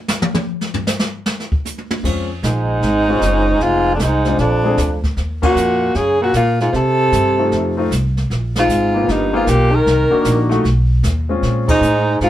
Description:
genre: jazz, small-group swing and bop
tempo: 153 BPM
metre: 4/4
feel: swing 66% on 8ths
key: unclear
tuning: A4 = 440 Hz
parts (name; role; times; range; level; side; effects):
- jazz brush drum kit; drums; 0.1-12.3 s; brushed snare drum, crash cymbal, hi-hat, kick drum, ride cymbal, snare drum, toms; -21 LUFS; equal; none
- warm concert grand piano; accompaniment; 2.0-11.8 s; Ab3 to Ab4; -20 LUFS; left 2 dB; none
- upright bass; bass; 2.0-12.3 s; F1 to C3; -18 LUFS; equal; none
- clear alto saxophone; melody; 2.4-12.3 s; D4 to A#4; -17 LUFS; left 1 dB; none
- mellow baritone saxophone; second line; 2.4-12.3 s; F2 to D#3; -18 LUFS; right 2 dB; none
room: moderate small room reverb, RT60 0.5 s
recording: band playing live in one room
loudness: -14 LUFS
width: side -12 dB against mid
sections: 0.0-2.0 A section; 2.0-12.3 B section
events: drum solo 0.0-2.0; band accent 5.4, 8.5, 11.6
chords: 0.0 N.C.; 2.0 Bbm7; 3.6 Fm7; 4.4 Bb7; 5.2 Ebmadd9; 6.7 Cm; 7.5 F7; 8.3 Bb5; 9.1 G7alt; 9.9 Cm7b5; 10.6 B; 11.4 Bbm7

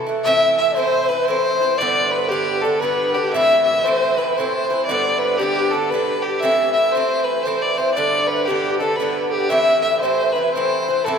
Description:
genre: celtic folk, Celtic waltz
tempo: 117 BPM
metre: 3/4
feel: swing 64% on 8ths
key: A minor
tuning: A4 = 440 Hz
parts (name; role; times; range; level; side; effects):
- clear fiddle; melody; 0.0-11.2 s; G4 to E5; -18 LUFS; left 1 dB; none
- Irish bouzouki; accompaniment; 0.0-11.2 s; G2 to E4; -24 LUFS; right 4 dB; none
- mellow bass bansuri; second line; 0.2-11.2 s; G4 to E5; -24 LUFS; left 3 dB; none
room: wet cathedral reverb, RT60 4.8 s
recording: recorded in a church or concert hall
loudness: -16 LUFS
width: side -6 dB against mid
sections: 0.2-11.2 A section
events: none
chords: 0.2 Am; 1.8 G; 3.3 Am; 4.9 G; 6.4 Am; 8.0 G; 9.5 Am

